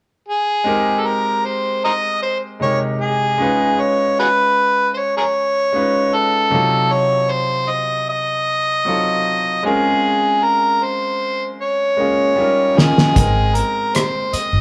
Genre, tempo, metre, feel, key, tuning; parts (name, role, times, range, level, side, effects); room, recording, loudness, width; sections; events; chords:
lush 1970s-style soul; 77 BPM; 4/4; straight; Ab major; A4 = 440 Hz
overdriven harmonica; melody; 0.3-14.6 s; Gb4 to Eb5; -19 LUFS; equal
bright concert grand piano; accompaniment; 0.6-14.6 s; C3 to G5; -24 LUFS; equal
cloth-damped thuddy drum kit; drums; 12.8-14.5 s; hi-hat, kick drum, rim click, snare drum; -18 LUFS; equal
vintage muted fingered electric bass; bass; 13.2-14.6 s; G1 to Ab1; -20 LUFS; equal
moderate large studio reverb, RT60 0.9 s; band playing live in one room; -17 LUFS; mono
0.7-14.6 A section
drum fill 11.6-13.2
0.0 N.C.; 0.7 Abmaj9; 3.4 Db9; 6.5 F7b9; 9.6 Bbm9; 12.4 Eb9; 13.2 Abmaj9